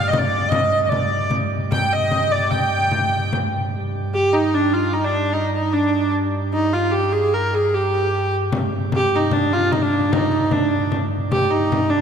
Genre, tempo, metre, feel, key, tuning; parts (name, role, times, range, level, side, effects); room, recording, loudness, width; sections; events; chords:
medieval dance; 150 BPM; 3/4; straight; A4 = 440 Hz
rich hurdy-gurdy; melody; 0.0-12.0 s; D4 to G5; -19 LUFS; right 1 dB
pipe organ, plenum; drone; 0.0-12.0 s; G2; -25 LUFS; right 2 dB
frame drum; percussion; 0.1-3.5, 8.5-11.9 s; -24 LUFS; left 2 dB
wet church reverb, RT60 3.5 s; -17 LUFS; side -7 dB against mid
0.0-3.7 A section; 3.7-12.0 A section